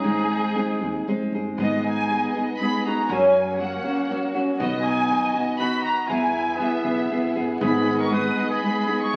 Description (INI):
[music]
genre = mexican folk, mariachi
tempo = 119 BPM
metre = 3/4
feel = straight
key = G# minor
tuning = A4 = 444 Hz
[part]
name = rich studio violin section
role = melody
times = 0.0-9.2 s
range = Ab4 to D#6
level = -29 LUFS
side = equal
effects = none
[part]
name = mellow trumpet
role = second line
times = 0.0-9.2 s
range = B3 to B4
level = -32 LUFS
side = equal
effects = none
[part]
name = nylon-string guitar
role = accompaniment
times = 0.0-9.2 s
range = F#2 to Ab4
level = -26 LUFS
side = equal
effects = none
[part]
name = upright bass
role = bass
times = 0.1-9.2 s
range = G#1 to Ab2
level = -37 LUFS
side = equal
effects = none
[part]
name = dark studio violin section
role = sustained chords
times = 1.6-9.2 s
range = A#3 to E5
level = -34 LUFS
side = equal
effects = none
[sound]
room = wet large studio reverb, RT60 1.3 s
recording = very old 78 rpm record, vinyl crackle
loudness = -23 LUFS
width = mono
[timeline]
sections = 0.0-1.6 A section; 1.6-9.2 B section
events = none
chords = 0.1 Ab; 1.6 G#m; 3.1 F#; 4.6 B; 6.1 E; 7.6 G#m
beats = | 0.06 0.56 1.07 | 1.59 2.10 2.60 | 3.10 3.60 4.10 | 4.60 5.10 5.60 | 6.10 6.60 7.11 | 7.62 8.13 8.63 | 9.13